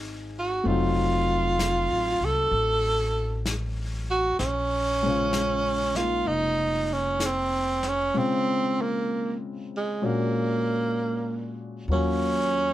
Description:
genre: jazz ballad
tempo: 64 BPM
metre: 4/4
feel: swing 69% on 8ths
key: Bb minor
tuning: A4 = 440 Hz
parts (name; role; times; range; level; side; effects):
- warm grand piano; accompaniment; 0.0-12.7 s; Bb2 to F5; -30 LUFS; left 3 dB; none
- upright bass; bass; 0.0-12.7 s; F1 to Eb2; -30 LUFS; equal; none
- breathy tenor saxophone; melody; 0.4-12.7 s; Ab3 to A4; -25 LUFS; right 2 dB; none
- vintage brush drum kit; drums; 0.7-12.7 s; brushed snare drum, hi-hat, snare drum; -36 LUFS; left 3 dB; none
room: light reverb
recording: none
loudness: -23 LUFS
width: side -14 dB against mid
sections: 0.0-11.9 A section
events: none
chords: 0.0 Fm7; 0.6 F7b9; 4.4 Bbm9; 10.0 Bb7alt; 11.9 Ebm9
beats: | 0.65 1.58 2.52 3.45 | 4.39 5.32 6.26 7.19 | 8.12 9.06 10.00 10.93 | 11.87

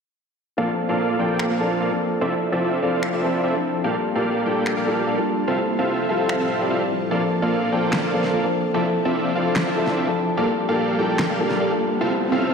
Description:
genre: future bass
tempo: 147 BPM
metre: 4/4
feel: half-time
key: unclear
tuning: A4 = 440 Hz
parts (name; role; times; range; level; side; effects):
- dark grand piano; accompaniment; 0.6-12.4 s; F3 to D5; -24 LUFS; left 2 dB; ping-pong delay
- ethereal airy pad; sustained chords; 1.2-12.5 s; A2 to E5; -29 LUFS; right 1 dB; ensemble chorus, built-in reverb, phaser
- dense compressed supersaw; riff; 0.6-12.5 s; Bb3 to G5; -22 LUFS; right 1 dB; vintage 12-bit sampler grit, low-pass filter, ping-pong delay
- electronic finger snaps and snare drum; drums; 1.4-11.6 s; none; -28 LUFS; equal; overdrive
- riser; sound effects; 11.6-12.5 s; none; -28 LUFS; right 4 dB; none
room: wet lush hall reverb, RT60 1.8 s, digital ambience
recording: dreamy mix soaked in reverb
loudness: -19 LUFS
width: side -6 dB against mid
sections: 0.6-12.5 A section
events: riser 11.6-12.5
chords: 0.6 Bbmaj7; 2.2 Dm9; 3.8 Gm9; 5.5 Fmaj7/A; 7.1 Bbmaj7; 8.7 Dm9; 10.4 Gm9; 12.0 Fmaj7/A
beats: | 0.58 0.99 1.40 1.80 | 2.21 2.62 3.03 3.44 | 3.84 4.25 4.66 5.07 | 5.48 5.88 6.29 6.70 | 7.11 7.52 7.92 8.33 | 8.74 9.15 9.56 9.97 | 10.37 10.78 11.19 11.60 | 12.01 12.41

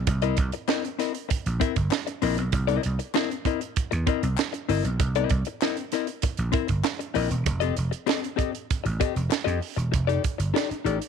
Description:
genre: funk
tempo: 97 BPM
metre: 4/4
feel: straight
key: unclear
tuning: A4 = 436 Hz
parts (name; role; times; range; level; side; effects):
- vintage slap bass; bass; 0.0-11.0 s; E1 to F2; -26 LUFS; right 1 dB; none
- hollow-body jazz guitar; accompaniment; 0.1-11.0 s; C4 to E5; -28 LUFS; left 15 dB; none
- tight funk drum kit; drums; 0.1-11.1 s; hi-hat, kick drum, snare drum; -28 LUFS; right 5 dB; none
- group handclap; percussion; 0.7-9.5 s; none; -37 LUFS; left 13 dB; none
room: small room ambience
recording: 1960s-style stereo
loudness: -23 LUFS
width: side -6 dB against mid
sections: 0.0-9.9 A section; 9.9-11.1 B section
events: none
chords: 0.1 C7#9; 7.5 F9; 9.9 F13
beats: | 0.07 0.69 1.30 1.92 | 2.53 3.15 3.76 4.38 | 5.00 5.61 6.23 6.84 | 7.46 8.08 8.70 9.31 | 9.93 10.55

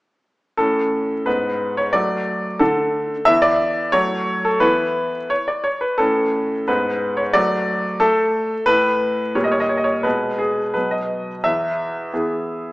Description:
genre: classical-period piano sonatina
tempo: 89 BPM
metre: 2/4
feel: straight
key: E major from 8.7 s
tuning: A4 = 442 Hz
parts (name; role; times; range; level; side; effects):
- clear baby grand piano; solo; 0.6-12.7 s; E2 to E5; -17 LUFS; equal; none
room: moderate recital hall reverb, RT60 1.8 s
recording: small speaker sound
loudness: -17 LUFS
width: side -20 dB against mid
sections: 0.6-11.4 A section; 11.4-12.7 B section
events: none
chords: 0.6 A; 1.3 G#madd11; 1.9 D/F#; 3.3 E5; 3.9 F#m; 4.6 E5; 6.0 A; 6.7 G#madd11; 7.3 D/F#; 8.7 N.C.; 9.4 A#m6; 10.0 G#m/B; 10.8 B; 11.4 E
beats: | 0.58 1.26 | 1.94 2.60 | 3.27 3.94 | 4.62 5.31 | 6.00 6.68 | 7.35 8.01 | 8.68 9.36 | 10.05 10.75 | 11.44 12.12

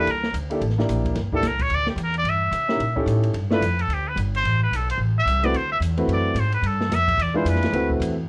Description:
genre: jazz, small-group swing and bop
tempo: 219 BPM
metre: 4/4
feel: swing 60% on 8ths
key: G mixolydian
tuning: A4 = 440 Hz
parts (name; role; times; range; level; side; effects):
- trumpet with straight mute; melody; 0.0-7.9 s; G4 to E5; -26 LUFS; equal; none
- warm baby grand piano; accompaniment; 0.0-8.1 s; G#3 to B4; -27 LUFS; equal; none
- upright bass; bass; 0.0-8.3 s; G1 to C3; -26 LUFS; equal; none
- open jazz drum kit; drums; 0.1-8.1 s; hi-hat, kick drum, ride cymbal, snare drum; -34 LUFS; equal; none
room: light reverb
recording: worn, warbling old tape, cassette tape, warbly pitch drift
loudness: -22 LUFS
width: mono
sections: 0.0-8.3 A section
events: muted trumpet solo 0.0-8.3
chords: 0.1 C13; 2.3 C#dim7; 3.3 G7; 4.4 Am; 5.5 D13; 6.6 Gsus2; 7.2 E7b9; 7.7 D13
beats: | 0.06 0.34 0.61 0.88 | 1.16 1.43 1.71 1.98 | 2.25 2.53 2.80 3.07 | 3.35 3.62 3.90 4.17 | 4.44 4.72 4.99 5.27 | 5.54 5.81 6.09 6.36 | 6.63 6.91 7.18 7.46 | 7.73 8.00

